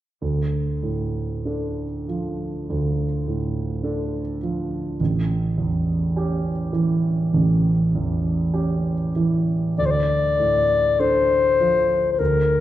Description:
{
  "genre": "classical, romantic duo for clarinet and grand piano",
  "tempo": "48-52 BPM",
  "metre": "4/4",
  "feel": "rubato",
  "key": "D minor",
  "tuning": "A4 = 440 Hz",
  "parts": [
    { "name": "dark grand piano", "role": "accompaniment", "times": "0.2-12.6 s", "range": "A1 to A4", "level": "-21 LUFS", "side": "right 2 dB", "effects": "none" },
    { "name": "mellow clarinet", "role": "melody", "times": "9.8-12.6 s", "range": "Bb4 to D5", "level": "-17 LUFS", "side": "left 4 dB", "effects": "none" }
  ],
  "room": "wet recital hall reverb, RT60 1.5 s",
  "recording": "dark, warm production",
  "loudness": "-19 LUFS",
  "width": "side -13 dB against mid",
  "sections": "0.2-9.8 A section; 9.8-12.6 B section",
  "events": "none",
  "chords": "0.2 Dm; 5.0 A7; 9.8 Dm",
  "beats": "| 0.23 1.47 2.69 3.85 | 5.00 6.15 7.34 8.55 | 9.78 11.00 12.20"
}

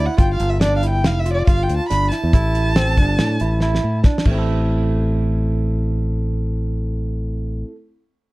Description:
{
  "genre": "progressive instrumental, band music in an uneven meter",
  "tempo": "140 BPM",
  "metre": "5/4",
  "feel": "straight",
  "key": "A minor",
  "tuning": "A4 = 439 Hz",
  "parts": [
    { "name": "dark violin", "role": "melody", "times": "0.0-4.0 s", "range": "D5 to B5", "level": "-24 LUFS", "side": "equal", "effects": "none" },
    { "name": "barky tine electric piano", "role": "arpeggios", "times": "0.0-7.8 s", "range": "A3 to A4", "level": "-24 LUFS", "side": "right 2 dB", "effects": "medium stereo tremolo" },
    { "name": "fingered electric bass", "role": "bass", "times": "0.0-7.6 s", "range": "F1 to A2", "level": "-19 LUFS", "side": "equal", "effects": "none" },
    { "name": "damped 70s drum kit", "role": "drums", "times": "0.2-4.4 s", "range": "crash cymbal, hi-hat, kick drum, snare drum", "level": "-17 LUFS", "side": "equal", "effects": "none" }
  ],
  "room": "light reverb",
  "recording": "dark, warm production",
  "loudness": "-16 LUFS",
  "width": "side -20 dB against mid",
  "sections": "0.0-4.5 A section; 4.5-8.3 B section",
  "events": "drum fill 3.6-4.5",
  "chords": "0.2 G5; 2.3 A5; 4.3 Am",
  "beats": "| 0.20 0.63 1.05 1.48 1.91 | 2.34 2.77 3.20 3.62 4.05 | 4.48 4.91 5.34 5.76 6.19 | 6.62 7.05 7.48"
}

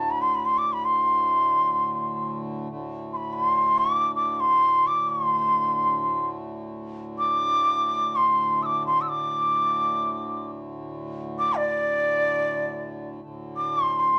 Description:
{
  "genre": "indian classical, Hindustani",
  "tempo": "free time",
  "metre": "none",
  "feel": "none",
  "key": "unclear",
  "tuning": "A4 = 439 Hz",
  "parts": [
    { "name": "breathy bright bansuri", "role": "melody", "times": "0.0-14.2 s", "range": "D5 to E6", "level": "-24 LUFS", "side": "equal", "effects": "none" },
    { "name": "hand-pumped harmonium", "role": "drone", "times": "0.0-14.2 s", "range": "D2 to A2", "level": "-37 LUFS", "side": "equal", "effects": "none" }
  ],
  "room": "wet club reverb, RT60 0.6 s",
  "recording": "none",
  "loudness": "-24 LUFS",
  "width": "mono",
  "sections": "0.0-13.2 A section",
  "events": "none",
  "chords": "none",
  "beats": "free time"
}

